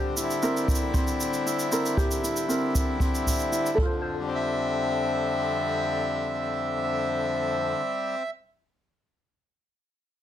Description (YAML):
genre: folktronica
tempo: 116 BPM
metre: 4/4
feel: straight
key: F major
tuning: A4 = 440 Hz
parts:
  - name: accordion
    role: sustained chords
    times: 0.0-8.3 s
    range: F2 to E5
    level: -26 LUFS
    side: left 1 dB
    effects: none
  - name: ukulele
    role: arpeggios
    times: 0.0-7.8 s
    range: C4 to C5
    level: -29 LUFS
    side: right 1 dB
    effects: low-pass filter, ping-pong delay
  - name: shaker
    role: drums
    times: 0.2-3.8 s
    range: none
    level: -33 LUFS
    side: right 2 dB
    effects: none
  - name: kick drum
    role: drums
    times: 0.7-3.9 s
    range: none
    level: -26 LUFS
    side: equal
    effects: none
room: moderate small room reverb, RT60 0.5 s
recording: none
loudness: -24 LUFS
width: side -10 dB against mid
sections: 0.0-4.0 A section; 4.0-8.2 B section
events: filter sweep on ukulele 0.0-4.0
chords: 0.0 C7; 3.8 F; 4.0 Fmaj7